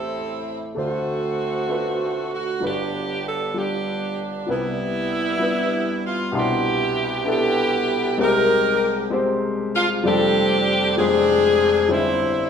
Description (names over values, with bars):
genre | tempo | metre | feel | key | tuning
gospel | 65 BPM (dotted quarters) | 6/8 | straight | C major | A4 = 440 Hz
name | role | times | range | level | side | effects
bright saxophone section | melody | 0.0-12.5 s | G3 to Bb4 | -21 LUFS | equal | none
warm upright piano | accompaniment | 0.0-12.5 s | F1 to C6 | -23 LUFS | left 1 dB | none
room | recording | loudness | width
wet large studio reverb, RT60 1.4 s | band playing live in one room | -19 LUFS | side -7 dB against mid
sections
0.0-6.3 A section; 6.3-12.5 B section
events
none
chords
0.0 Am7; 0.8 D7; 2.6 G7; 4.5 Cmaj7; 6.3 Cmaj9; 8.2 Abmaj9/C; 10.0 F69; 11.0 Fm6; 11.9 C/G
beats
| 0.76 1.69 | 2.62 3.55 | 4.48 5.41 | 6.34 7.26 | 8.19 9.12 | 10.04 10.97 | 11.90